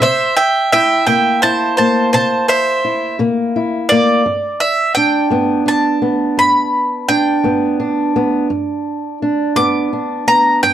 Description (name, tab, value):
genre	acoustic country blues, solo or duo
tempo	56 BPM (dotted quarters)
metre	12/8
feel	straight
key	unclear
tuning	A4 = 440 Hz
part	bowl-back mandolin	melody	0.0-10.7 s	C5 to D6	-13 LUFS	right 1 dB	none
part	fingerpicked old ladder-braced acoustic guitar	accompaniment	0.0-10.7 s	G2 to E4	-16 LUFS	equal	none
room	moderate small room ambience, RT60 0.5 s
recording	none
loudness	-12 LUFS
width	side -10 dB against mid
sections	0.0-10.7 A section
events	mandolin solo 0.0-10.7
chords	0.0 C7; 4.3 G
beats	| 0.01 1.07 2.13 3.19 | 4.25 5.32 6.38 7.44 | 8.51 9.57 10.63